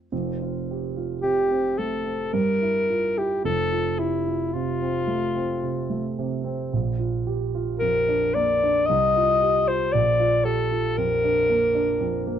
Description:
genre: classical, romantic duo for alto saxophone and grand piano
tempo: 55 BPM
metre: 3/4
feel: uneven beats, rubato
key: F major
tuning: A4 = 440 Hz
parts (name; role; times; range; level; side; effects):
- dark concert grand piano; accompaniment; 0.0-12.4 s; F1 to G4; -26 LUFS; right 4 dB; none
- warm alto saxophone; melody; 1.2-12.4 s; E4 to Eb5; -22 LUFS; left 2 dB; none
room: light reverb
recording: dark, warm production, nothing above 10.4 kHz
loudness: -21 LUFS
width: side -9 dB against mid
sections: 0.1-12.4 A section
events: none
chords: 0.1 F; 2.3 Gm6; 3.5 F; 6.7 Bb; 8.9 F5/C; 9.9 Bb

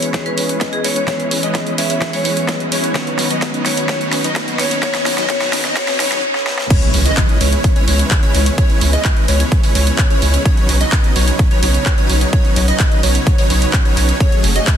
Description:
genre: EDM, festival progressive house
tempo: 128 BPM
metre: 4/4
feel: straight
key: C# minor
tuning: A4 = 440 Hz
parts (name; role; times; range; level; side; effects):
- marimba with hard mallets; melody; 0.0-6.2 s; G#4 to E5; -23 LUFS; left 2 dB; dub echo
- clean electric guitar; accompaniment; 0.0-6.2 s; D#3 to G#4; -25 LUFS; left 2 dB; sidechain pumping
- lush unison pad; sustained chords; 0.0-14.8 s; C#3 to B4; -27 LUFS; equal; chorus, sidechain pumping
- plucky unison lead; arpeggios; 0.0-14.8 s; C#5 to D#5; -24 LUFS; equal; analog chorus, sidechain pumping, dub echo
- supersaw chords; riff; 0.0-14.8 s; F#3 to D#5; -22 LUFS; right 1 dB; sidechain pumping, low-pass filter, dub echo
- big-room dance drum kit; drums; 0.0-14.8 s; crash cymbal, handclaps, hi-hat, snare drum; -20 LUFS; right 1 dB; overdrive, high-pass filter on hats, studio reverb, high-pass filter on snare, high-pass filter on cymbals
- riser and impact; sound effects; 2.1-8.6 s; none; -25 LUFS; equal; none
- electronic kick drum; drums; 0.1-14.8 s; none; -14 LUFS; equal; overdrive, high-pass filter on kick, studio reverb
- saturated sub bass; bass; 6.9-14.6 s; F#1 to C#2; -15 LUFS; equal; sidechain pumping
room: light reverb, digital ambience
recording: dense, heavily limited modern master, high-pass filter, lossy compression artefacts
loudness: -13 LUFS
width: side -9 dB against mid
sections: 0.0-6.7 A section; 6.7-14.8 B section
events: build-up 0.0-6.7; drum fill 0.0-6.2, 6.4-6.7; filter sweep on supersaw synth 0.0-6.7; filter sweep on digital synth lead 0.0-6.7; riser 2.1-6.2; break 6.2-6.7; drop 6.7-14.8; impact 6.7-8.6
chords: 0.0 C#m7; 3.0 Badd9; 6.7 C#m7; 10.5 Badd9; 14.2 F#madd9

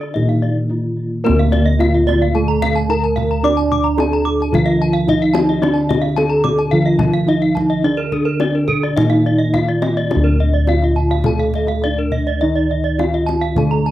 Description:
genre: Balinese gamelan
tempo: 107 BPM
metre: 4/4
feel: uneven beats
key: D pelog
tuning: A4 = 441 Hz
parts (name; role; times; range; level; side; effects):
- gamelan-type bronze metallophone; melody; 0.0-13.9 s; Bb3-20c to D5; -19 LUFS; equal; none
- gamelan-type bronze metallophone; accompaniment; 0.0-13.9 s; D3 to D4; -22 LUFS; right 5 dB; none
- gamelan-type bronze metallophone; arpeggios; 0.0-13.9 s; A4-30c to D6; -24 LUFS; left 6 dB; tape echo
- gamelan-type bossed gongs; bass; 0.0-13.9 s; D2 to D5; -18 LUFS; equal; none
- kendang; percussion; 0.0-13.8 s; none; -24 LUFS; left 4 dB; none
- gamelan-type bronze metallophone; arpeggios; 0.3-13.9 s; A4-30c to D6; -24 LUFS; right 6 dB; none
room: light reverb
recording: dry, close 1970s-style studio recording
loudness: -14 LUFS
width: side -14 dB against mid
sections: 0.0-10.1 A section; 10.1-13.9 B section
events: break 0.4-1.2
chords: none

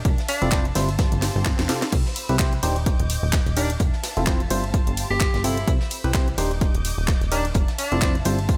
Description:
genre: piano house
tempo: 128 BPM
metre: 4/4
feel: swing 56% on 16ths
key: unclear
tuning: A4 = 440 Hz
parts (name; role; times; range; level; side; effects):
- dark studio string section; sustained chords; 0.0-8.6 s; G4 to G6; -38 LUFS; equal; sidechain pumping
- vintage brush drum kit; drums; 0.0-8.6 s; hi-hat, snare drum; -40 LUFS; equal; none
- plucky analog bass; bass; 0.1-8.6 s; Eb1 to C2; -27 LUFS; equal; sidechain pumping
- electronic kick drum; drums; 0.1-8.6 s; none; -24 LUFS; equal; overdrive
- garage drum kit; drums; 0.1-8.6 s; crash cymbal, handclaps, hi-hat, ride cymbal, snare drum; -32 LUFS; equal; none
- clear tenor saxophone; melody; 0.3-0.7, 3.6-8.2 s; D4 to G4; -31 LUFS; equal; tape echo
- percussive organ stab; riff; 0.4-8.4 s; C3 to C5; -30 LUFS; equal; chorus, phaser, cassette tape, sidechain pumping, tape echo
- swell; sound effects; 1.1-1.9 s; none; -39 LUFS; equal; none
room: light reverb, small room reverb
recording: echo-heavy mix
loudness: -22 LUFS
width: mono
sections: 0.0-8.6 A section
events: drum fill 1.2-1.9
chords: 0.1 Fmaj7; 1.0 G9sus4; 1.9 Cmaj7; 2.6 Ebmaj7; 3.8 Fmaj7; 4.7 G9sus4; 5.7 Cmaj7; 6.4 Ebmaj7; 7.6 Fmaj7

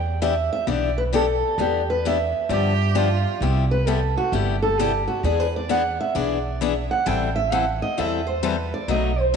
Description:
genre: acoustic string swing (jazz manouche)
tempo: 131 BPM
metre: 4/4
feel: swing 64% on 8ths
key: E minor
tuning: A4 = 440 Hz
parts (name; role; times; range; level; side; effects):
- picked steel-string acoustic guitar; melody; 0.0-9.3 s; F#4 to G5; -24 LUFS; right 3 dB; none
- upright bass; bass; 0.0-9.4 s; G1 to G2; -25 LUFS; right 1 dB; none
- picked steel-string acoustic guitar; accompaniment; 0.2-9.4 s; B2 to A4; -25 LUFS; left 9 dB; none
- clear violin; second line; 2.5-3.4 s; F4 to G4; -29 LUFS; right 8 dB; none
room: moderate echo chamber reverb, RT60 2.8 s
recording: 1960s-style stereo with parts hard left and right, nothing above 10.4 kHz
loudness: -20 LUFS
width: side -6 dB against mid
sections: 0.0-3.4 A section; 3.4-9.4 B section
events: steel-string acoustic guitar solo 3.4-9.4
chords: 0.0 Em7; 2.5 G7; 3.4 Cmaj7; 5.2 E7; 7.1 Am7

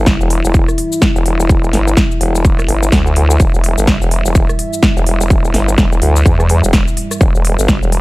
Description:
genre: bass house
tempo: 126 BPM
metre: 4/4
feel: swing 60% on 16ths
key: E minor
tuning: A4 = 440 Hz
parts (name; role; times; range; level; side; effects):
- dark analog pad; sustained chords; 0.0-8.0 s; G3 to E5; -21 LUFS; left 1 dB; chorus, sidechain pumping
- vowel-sweep wobble bass; bass; 0.0-8.0 s; E1 to E2; -14 LUFS; equal; chorus, overdrive, sidechain pumping
- big-room dance drum kit; drums; 0.1-8.0 s; hi-hat, rim click, shaker, snare drum; -18 LUFS; equal; overdrive
- electronic kick drum; drums; 0.1-7.8 s; none; -13 LUFS; equal; overdrive
room: little or no reverb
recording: dark, warm production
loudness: -10 LUFS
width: side -20 dB against mid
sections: 0.0-8.0 A section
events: none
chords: 0.0 Em

